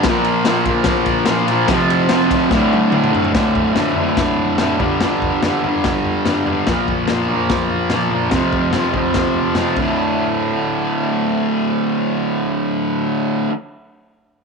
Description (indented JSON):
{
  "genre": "garage rock duo or trio",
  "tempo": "145 BPM",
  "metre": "4/4",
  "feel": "straight",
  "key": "D minor",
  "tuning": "A4 = 440 Hz",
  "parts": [
    { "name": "fuzz guitar", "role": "riff", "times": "0.0-13.5 s", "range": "D2 to Bb3", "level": "-16 LUFS", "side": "equal", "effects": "distortion" },
    { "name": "raw garage drum kit", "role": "drums", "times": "0.0-9.9 s", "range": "crash cymbal, kick drum, ride cymbal, snare drum, toms", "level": "-21 LUFS", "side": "left 3 dB", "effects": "none" }
  ],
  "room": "light reverb, small room reverb",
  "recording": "1960s-style stereo",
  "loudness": "-15 LUFS",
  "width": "side -4 dB against mid",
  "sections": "0.0-3.3 A section; 3.3-10.0 B section; 10.0-13.3 C section",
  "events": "drum fill 2.5-3.3",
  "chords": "0.1 Bb5; 1.7 F5; 2.5 D5; 4.8 G5; 6.7 Bb5; 8.3 F5; 9.8 D5"
}